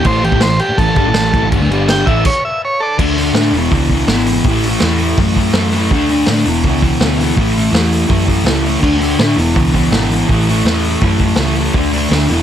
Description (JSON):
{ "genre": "garage rock duo or trio", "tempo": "164 BPM", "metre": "4/4", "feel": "straight", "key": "A major", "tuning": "A4 = 440 Hz", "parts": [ { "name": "overdriven combo organ", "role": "melody", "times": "0.0-3.0 s", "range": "G4 to G5", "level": "-16 LUFS", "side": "right 1 dB", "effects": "none" }, { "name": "fuzz guitar", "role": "riff", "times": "0.0-12.4 s", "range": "E2 to E4", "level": "-14 LUFS", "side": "left 1 dB", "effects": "distortion" }, { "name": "hollow-body short-scale picked electric bass", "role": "bass", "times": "0.0-12.4 s", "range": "E1 to A2", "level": "-17 LUFS", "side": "equal", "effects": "none" }, { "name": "vintage drum kit", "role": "drums", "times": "0.0-12.4 s", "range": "crash cymbal, hi-hat, kick drum, snare drum", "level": "-17 LUFS", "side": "equal", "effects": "none" } ], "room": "light reverb", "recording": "none", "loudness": "-11 LUFS", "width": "side -10 dB against mid", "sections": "0.0-3.0 A section; 3.0-12.4 B section", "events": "transistor combo organ solo 0.0-3.0; stop 2.3-3.0", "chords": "0.1 A5; 1.7 G5; 2.1 A5; 3.0 D5; 3.5 E; 4.4 A5; 5.9 D5; 6.5 E5; 7.4 A; 8.8 D5; 9.4 E; 10.3 A; 11.7 D5", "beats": "| 0.06 0.43 0.79 1.16 | 1.52 1.89 2.25 2.62 | 2.99 3.35 3.72 4.08 | 4.45 4.81 5.18 5.54 | 5.91 6.27 6.64 7.00 | 7.37 7.73 8.10 8.46 | 8.83 9.19 9.55 9.92 | 10.28 10.64 11.01 11.37 | 11.74 12.10" }